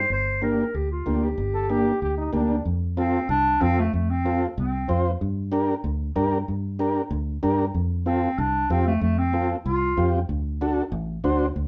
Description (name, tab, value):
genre	latin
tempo	189 BPM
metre	4/4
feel	straight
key	G minor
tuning	A4 = 440 Hz
part	mellow clarinet	melody	0.0-5.0, 8.1-10.1 s	A3 to C5	-27 LUFS	equal	none
part	fingered electric bass	bass	0.0-11.7 s	G1 to G2	-28 LUFS	equal	none
part	combo organ	accompaniment	0.4-11.5 s	Bb3 to C5	-27 LUFS	equal	none
part	bright trombone	second line	1.5-2.6 s	D4 to A4	-31 LUFS	equal	none
room	moderate studio reverb, RT60 0.6 s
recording	band playing live in one room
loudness	-24 LUFS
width	mono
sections	0.0-2.7 A section; 2.7-11.7 B section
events	none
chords	0.1 Gm; 2.7 F; 5.2 Gm; 7.8 F; 10.3 D